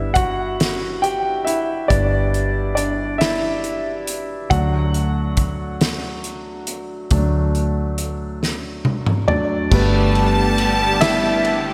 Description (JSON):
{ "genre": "six-eight pop ballad", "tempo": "46 BPM (dotted quarters)", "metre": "6/8", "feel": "straight", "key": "G major", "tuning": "A4 = 439 Hz", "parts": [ { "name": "clear concert grand piano", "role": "accompaniment", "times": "0.0-11.7 s", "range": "F#3 to G5", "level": "-23 LUFS", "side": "equal", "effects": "slapback echo" }, { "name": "vintage muted fingered electric bass", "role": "bass", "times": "0.0-11.7 s", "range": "G1 to D2", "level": "-24 LUFS", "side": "equal", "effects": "none" }, { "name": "loose indie drum kit", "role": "drums", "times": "0.2-11.7 s", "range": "crash cymbal, hi-hat, kick drum, ride cymbal, snare drum, toms", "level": "-24 LUFS", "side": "equal", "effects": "none" }, { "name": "bright symphonic violin section", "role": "second line", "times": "9.7-11.7 s", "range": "A5", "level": "-24 LUFS", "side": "equal", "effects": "delay" }, { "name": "rich studio string section", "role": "sustained chords", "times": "9.7-11.7 s", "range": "D3 to G4", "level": "-25 LUFS", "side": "equal", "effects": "none" } ], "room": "moderate lush hall reverb, RT60 2.5 s", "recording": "big arena sound", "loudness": "-19 LUFS", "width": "mono", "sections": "0.0-9.7 A section; 9.7-11.7 B section", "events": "grand piano solo 0.0-9.7, 9.7-11.7; drum fill 8.4-9.7", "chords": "0.0 G; 4.5 D; 9.7 Gadd9" }